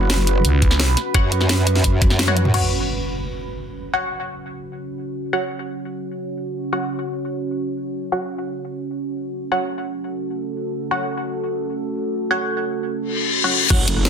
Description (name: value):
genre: dark technical drum and bass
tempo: 172 BPM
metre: 4/4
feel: straight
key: F# minor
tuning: A4 = 441 Hz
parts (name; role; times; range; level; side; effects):
- deep dark ambient pad; sustained chords; 0.0-14.1 s; C#4 to C#5; -25 LUFS; right 2 dB; chorus, built-in reverb, sidechain pumping
- growl bass; bass; 0.0-2.5, 13.7-14.1 s; F#1 to F#2; -19 LUFS; equal; chorus, tube saturation
- drum and bass drum kit; drums; 0.1-2.6, 13.7-14.1 s; crash cymbal, hi-hat, snare drum, toms; -21 LUFS; equal; none
- growling FM bass; bass; 0.4-1.0 s; C#2; -17 LUFS; equal; none
- electronic kick drum; drums; 0.6-2.1, 13.7-13.8 s; none; -17 LUFS; equal; none
- filtered dub chord stab; stabs; 1.1-13.8 s; F#4 to F#5; -24 LUFS; left 1 dB; phaser, wide subtle chorus, tape echo
- impact and reverse cymbal; sound effects; 2.5-3.9, 13.1-14.1 s; none; -22 LUFS; left 3 dB; none
room: light reverb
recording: dense, heavily limited modern master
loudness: -19 LUFS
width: side -7 dB against mid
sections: 0.0-2.5 A section; 2.5-13.7 B section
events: drop 0.0-2.5; kick drops out 2.2-2.5; drum fill 2.2-2.5; band accent 2.2; impact 2.5-3.9, 13.7-14.1; filter sweep on ambient pad 2.5-13.7; reverse cymbal 13.1-13.7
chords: 0.0 F#5